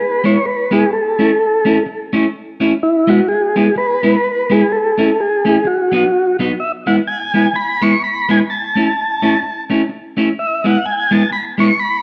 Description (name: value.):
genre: ska.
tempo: 127 BPM.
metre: 4/4.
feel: swing 58% on 8ths.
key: E major.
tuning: A4 = 437 Hz.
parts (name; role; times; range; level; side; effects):
tonewheel organ; melody; 0.0-12.0 s; E4 to C#6; -18 LUFS; equal; overdrive, slow rotary speaker, analog delay.
clean electric guitar; accompaniment; 0.2-11.7 s; F#3 to E4; -18 LUFS; equal; warbly pitch drift.
room: moderate echo chamber reverb, RT60 1.6 s, digital ambience.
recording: none.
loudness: -15 LUFS.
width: mono.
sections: 0.0-6.6 A section; 6.6-12.0 A section.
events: none.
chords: 0.0 E; 0.9 A; 2.8 E; 4.7 A; 5.7 B; 6.6 E; 8.5 A; 10.4 E.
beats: 0.44 | 0.92 1.39 1.86 2.34 | 2.81 3.29 3.76 4.23 | 4.71 5.18 5.65 6.13 | 6.60 7.07 7.54 8.02 | 8.49 8.96 9.43 9.90 | 10.37 10.84 11.31 11.79.